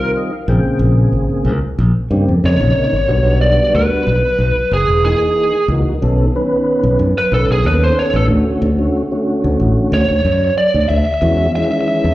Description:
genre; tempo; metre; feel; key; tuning
electric jazz fusion; 92 BPM; 4/4; straight; unclear; A4 = 440 Hz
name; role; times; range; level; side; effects
biting lead guitar; melody; 0.0-12.1 s; Ab4 to E5; -16 LUFS; right 1 dB; overdrive, slapback echo
mellow tonewheel organ; accompaniment; 0.0-12.1 s; C3 to G5; -18 LUFS; equal; slow rotary speaker, overdrive, chorus vibrato, slapback echo
modern bright fingered electric bass; bass; 0.5-12.1 s; Fb1 to G2; -14 LUFS; equal; none
room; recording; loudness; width
light reverb, digital ambience; live gig heard through the venue's PA, club reverb; -12 LUFS; side -16 dB against mid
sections
0.0-6.0 A section; 6.0-12.1 B section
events
tonewheel organ fill 0.0-0.8; lead electric guitar solo 6.0-12.1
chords
0.5 Bbm9; 3.1 Gmaj7/B; 4.7 Gb13; 6.0 B9; 8.3 Dmaj7; 11.2 E69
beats
0.15 | 0.81 1.46 2.11 2.76 | 3.42 4.07 4.72 5.37 | 6.02 6.68 7.33 7.98 | 8.63 9.28 9.93 10.59 | 11.24 11.89

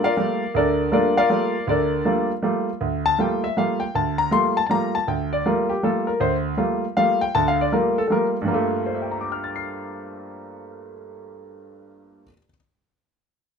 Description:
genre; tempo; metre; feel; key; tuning
jazz; 159 BPM; 3/4; swing 64% on 8ths; G dorian; A4 = 440 Hz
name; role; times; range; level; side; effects
clear concert grand piano; solo; 0.0-12.6 s; D2 to C7; -20 LUFS; equal; none
room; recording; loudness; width
light reverb; minimal, uncompressed stereo recording; -19 LUFS; side -6 dB against mid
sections
0.0-8.5 A section; 8.5-10.7 B section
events
none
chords
0.0 Gm9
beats
0.16 | 0.54 0.91 1.29 | 1.67 2.05 2.42 | 2.80 3.18 3.56 | 3.94 4.32 4.69 | 5.07 5.45 5.83 | 6.21 6.58 6.96 | 7.34 7.72 8.10 | 8.47 8.85 9.23 | 9.61 9.99 10.37

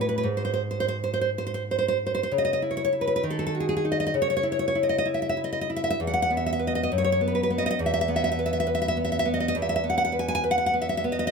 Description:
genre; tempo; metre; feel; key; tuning
romantic piece for solo classical guitar; 56-70 BPM (dotted quarters); 6/8; rubato; C# minor; A4 = 438 Hz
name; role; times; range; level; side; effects
nylon-string guitar; solo; 0.0-11.3 s; E2 to G#5; -23 LUFS; equal; none
room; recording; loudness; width
moderate recital hall reverb, RT60 1.3 s; close, detailed microphones; -23 LUFS; side -5 dB against mid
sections
0.0-2.3 A section; 2.3-11.3 B section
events
none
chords
0.0 N.C.; 2.3 C#m; 3.2 D#dim; 4.2 C#m; 6.0 E5; 6.9 B5/F#; 7.8 E5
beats
| 0.27 1.28 | 2.31 3.23 | 4.16 5.08 | 6.00 6.89 | 7.80 8.69 | 9.56 10.44

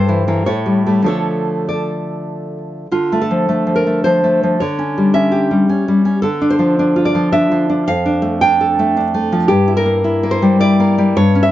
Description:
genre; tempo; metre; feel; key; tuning
romantic piece for solo classical guitar; 109 BPM; 3/4; rubato; D minor; A4 = 440 Hz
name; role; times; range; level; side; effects
nylon-string guitar; solo; 0.0-11.5 s; F2 to G5; -13 LUFS; equal; none
room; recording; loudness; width
light reverb; dark, warm production, nothing above 7.7 kHz; -12 LUFS; side -13 dB against mid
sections
0.0-2.9 A section; 2.9-11.5 B section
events
none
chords
0.5 A7; 1.1 Dm; 4.6 C#dim; 6.2 Dm; 7.9 Dm/F; 9.5 Edim/G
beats
0.47 | 1.07 1.69 2.30 | 2.92 3.48 4.04 | 4.60 5.14 5.69 | 6.24 6.78 7.33 | 7.87 8.42 8.96 | 9.50 10.05 10.60 | 11.16

